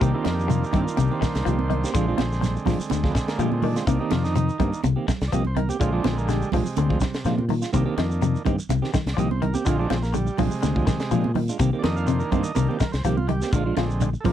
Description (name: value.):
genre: afrobeat.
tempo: 124 BPM.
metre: 4/4.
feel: swing 53% on 16ths.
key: C minor.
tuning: A4 = 440 Hz.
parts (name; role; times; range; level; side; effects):
overdriven combo organ; accompaniment; 0.0-14.3 s; C3 to F5; -29 LUFS; right 4 dB; none.
electric guitar at the edge of break-up; arpeggios; 0.0-14.3 s; C3 to F3; -26 LUFS; left 8 dB; phaser.
semi-hollow electric guitar; stabs; 0.0-14.3 s; Eb3 to G4; -28 LUFS; right 6 dB; none.
fingered electric bass; bass; 0.0-14.3 s; Bb1 to Bb2; -25 LUFS; left 1 dB; none.
tight funk drum kit; drums; 0.0-14.3 s; hi-hat, kick drum, snare drum; -27 LUFS; equal; none.
shekere; percussion; 0.0-14.3 s; none; -32 LUFS; right 1 dB; none.
congas; percussion; 0.2-14.3 s; none; -29 LUFS; right 10 dB; none.
room: little or no reverb.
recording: dry, close 1970s-style studio recording.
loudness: -21 LUFS.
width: side -11 dB against mid.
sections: 0.0-14.3 A section.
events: transistor combo organ solo 0.0-14.3.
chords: 0.0 Cm7; 1.9 Bb7; 3.9 Cm7; 5.8 Bb7; 7.7 Cm7; 9.7 Bb7; 11.6 Cm7; 13.5 Bb7.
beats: | 0.01 0.50 0.98 1.46 | 1.94 2.43 2.91 3.39 | 3.88 4.36 4.84 5.32 | 5.81 6.29 6.77 7.25 | 7.74 8.22 8.70 9.19 | 9.67 10.15 10.63 11.12 | 11.60 12.08 12.56 13.04 | 13.53 14.01.